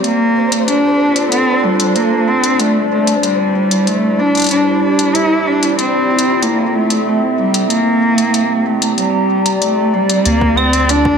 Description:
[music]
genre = IDM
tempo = 94 BPM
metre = 4/4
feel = straight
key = D minor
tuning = A4 = 436 Hz
[part]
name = dark cello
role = melody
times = 0.0-11.2 s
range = G3 to E4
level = -14 LUFS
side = equal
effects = vintage 12-bit sampler grit, ping-pong delay
[part]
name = warbly tape-like pad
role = sustained chords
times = 0.0-11.2 s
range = G3 to Bb5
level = -16 LUFS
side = equal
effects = chorus, built-in reverb, vintage 12-bit sampler grit
[part]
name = electronic hi-hat and claves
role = drums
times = 0.0-11.0 s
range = none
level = -20 LUFS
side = left 2 dB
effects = none
[part]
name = flickering grainy texture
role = texture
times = 0.0-10.3 s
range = C5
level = -27 LUFS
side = right 1 dB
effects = built-in reverb
[part]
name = warm sub bass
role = bass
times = 10.3-11.2 s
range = D2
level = -17 LUFS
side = equal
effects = none
[part]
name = electronic kick drum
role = drums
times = 10.4-11.2 s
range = none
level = -21 LUFS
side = equal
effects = none
[sound]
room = moderate lush hall reverb, RT60 2.0 s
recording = none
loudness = -11 LUFS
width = side -6 dB against mid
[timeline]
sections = 0.0-10.3 A section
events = none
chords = 0.0 Dm7; 2.6 C69/G; 5.1 Fmaj7; 7.7 C9; 10.3 Dm7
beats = | 0.04 0.68 1.32 1.96 | 2.60 3.23 3.87 4.51 | 5.15 5.79 6.42 7.06 | 7.70 8.34 8.98 9.62 | 10.26 10.89

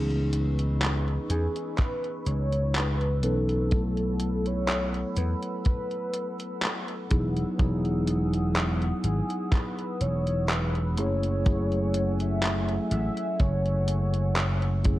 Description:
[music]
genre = vaporwave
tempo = 62 BPM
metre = 4/4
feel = swing 54% on 16ths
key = E major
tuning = A4 = 440 Hz
[part]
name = mellow tine electric piano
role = accompaniment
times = 0.0-15.0 s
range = E3 to B4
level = -31 LUFS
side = equal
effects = wide subtle chorus
[part]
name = warbly tape-like pad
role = sustained chords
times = 0.0-15.0 s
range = A3 to E6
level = -39 LUFS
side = equal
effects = chorus, built-in reverb, vintage 12-bit sampler grit
[part]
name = vintage slap bass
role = bass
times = 0.0-15.0 s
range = E1 to E2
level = -27 LUFS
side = equal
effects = tube saturation
[part]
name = detuned 8-bit digital drum machine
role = drums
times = 0.1-15.0 s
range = handclaps, hi-hat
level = -32 LUFS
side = equal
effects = overdrive, gated reverb
[part]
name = warm velvety synth lead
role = melody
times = 1.3-14.8 s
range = G#4 to E5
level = -33 LUFS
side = equal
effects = chorus, tape echo
[part]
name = kick drum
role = drums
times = 1.8-15.0 s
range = none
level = -24 LUFS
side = equal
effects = none
[sound]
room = light reverb, digital ambience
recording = cassette tape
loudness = -24 LUFS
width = side -16 dB against mid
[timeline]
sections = 0.0-15.0 A section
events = none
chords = 0.0 C#m9; 3.7 B7sus4; 7.1 Emaj9; 11.0 F#m9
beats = 0.82 1.78 2.75 | 3.72 4.69 5.65 6.62 | 7.59 8.56 9.53 10.49 | 11.46 12.43 13.40 14.36

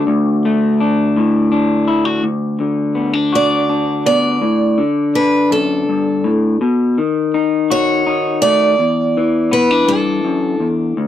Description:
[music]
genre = acoustic folk-pop ballad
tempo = 55 BPM (dotted quarters)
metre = 6/8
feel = straight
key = D major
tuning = A4 = 438 Hz
[part]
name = electric guitar through a small old amp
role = accompaniment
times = 0.0-11.1 s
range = D2 to F#4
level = -14 LUFS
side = left 2 dB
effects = none
[part]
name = picked steel-string acoustic guitar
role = melody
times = 3.4-10.7 s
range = A4 to D5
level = -17 LUFS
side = right 2 dB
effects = none
[sound]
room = light reverb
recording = dry, close 1970s-style studio recording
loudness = -13 LUFS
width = side -11 dB against mid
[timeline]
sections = 0.1-2.2 A section; 2.2-11.1 B section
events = none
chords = 0.1 D5; 2.2 D6; 4.4 A7sus4; 6.6 B7; 8.8 Em7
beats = | 0.07 1.16 | 2.24 3.34 | 4.43 5.52 | 6.61 7.69 | 8.78 9.88 | 10.97

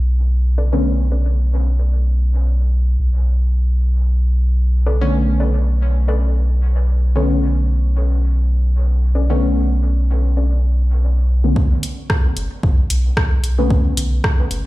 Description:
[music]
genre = dub techno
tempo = 112 BPM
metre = 4/4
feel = swing 55% on 16ths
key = B minor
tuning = A4 = 440 Hz
[part]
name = deep mellow chord stab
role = stabs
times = 0.0-14.7 s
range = D3 to C#4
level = -23 LUFS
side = left 1 dB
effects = chorus, phaser, sidechain pumping, dub echo
[part]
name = soft dub sub bass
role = bass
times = 0.0-14.6 s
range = F#1 to B1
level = -15 LUFS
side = equal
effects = sidechain pumping
[part]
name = warbly dusty pluck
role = riff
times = 0.6-1.3, 4.9-10.6 s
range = C#4 to D5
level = -30 LUFS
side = left 2 dB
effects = chorus, sidechain pumping, dub echo
[part]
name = electronic kick drum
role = drums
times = 11.6-14.4 s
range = none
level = -16 LUFS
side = equal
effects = none
[part]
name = deep house drum kit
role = drums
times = 11.8-14.6 s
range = hi-hat, rim click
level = -24 LUFS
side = equal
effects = low-pass filter on hats, low-pass filter on snare, low-pass filter on room
[sound]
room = digital ambience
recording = played on a big sound system in a bare room, large studio reverb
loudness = -15 LUFS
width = side -18 dB against mid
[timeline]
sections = 0.0-11.6 A section; 11.6-14.7 B section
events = filter sweep on synth stab 0.0-11.6, 11.6-14.7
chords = 0.0 Bm9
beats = 0.31 | 0.85 1.38 1.92 2.46 | 2.99 3.53 4.06 4.60 | 5.13 5.67 6.21 6.74 | 7.28 7.81 8.35 8.88 | 9.42 9.96 10.49 11.03 | 11.56 12.10 12.63 13.17 | 13.71 14.24

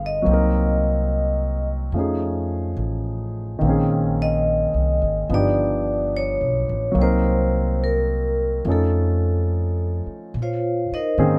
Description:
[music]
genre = jazz ballad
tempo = 72 BPM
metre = 4/4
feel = swing 68% on 8ths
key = Bb minor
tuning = A4 = 439 Hz
[part]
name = vibraphone with medium hard mallets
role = melody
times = 0.0-11.4 s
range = Eb4 to F5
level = -26 LUFS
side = equal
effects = none
[part]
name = warm grand piano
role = accompaniment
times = 0.0-11.4 s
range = D3 to Bb4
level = -26 LUFS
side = equal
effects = none
[part]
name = upright bass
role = bass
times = 0.0-11.4 s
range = G1 to Bb2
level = -25 LUFS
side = equal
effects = none
[sound]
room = little or no reverb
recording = close, detailed microphones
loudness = -22 LUFS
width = mono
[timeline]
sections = 0.0-10.3 A section; 10.3-11.4 B section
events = vibraphone solo 10.3-11.4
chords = 0.3 Cm7b5; 1.9 F7alt; 3.6 Bbm11; 5.3 G7b13; 7.0 Cm7b5; 8.6 Faug7; 10.3 Bbm11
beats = | 0.28 1.11 1.94 2.78 | 3.61 4.44 5.28 6.11 | 6.95 7.79 8.64 9.49 | 10.34 11.19

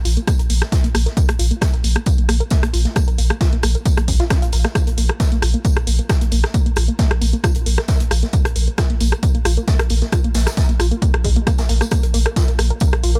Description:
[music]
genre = driving peak-time techno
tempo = 134 BPM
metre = 4/4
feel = straight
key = unclear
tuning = A4 = 440 Hz
[part]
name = warm sub bass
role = bass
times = 0.0-13.2 s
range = Bb1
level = -21 LUFS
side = equal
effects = overdrive, sidechain pumping, low-pass filter
[part]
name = tight sequenced synth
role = riff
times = 0.1-13.2 s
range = Ab3 to Bb4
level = -29 LUFS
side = equal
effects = chorus, phaser, tube saturation, sidechain pumping, delay
[part]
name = punchy analog drum machine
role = drums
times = 0.1-13.2 s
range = hi-hat, rim click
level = -26 LUFS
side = equal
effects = none
[part]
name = swinging big-band drum kit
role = drums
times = 0.1-13.1 s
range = hi-hat, snare drum, tambourine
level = -34 LUFS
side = equal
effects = sidechain pumping on hats, high-pass filter on hats, high-pass filter on snare, sidechain pumping on perc, high-pass filter on perc, high-pass filter on room
[part]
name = electronic kick drum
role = drums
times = 0.3-12.9 s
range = none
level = -20 LUFS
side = equal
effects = none
[sound]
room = small room ambience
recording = none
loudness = -17 LUFS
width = mono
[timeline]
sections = 0.0-13.2 A section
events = filter sweep on synth arpeggio sound 0.0-13.2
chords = 0.0 Bb5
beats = 0.27 0.72 | 1.17 1.62 2.06 2.51 | 2.96 3.41 3.86 4.30 | 4.75 5.20 5.65 6.09 | 6.54 6.99 7.44 7.89 | 8.33 8.78 9.23 9.68 | 10.12 10.57 11.02 11.47 | 11.92 12.36 12.81

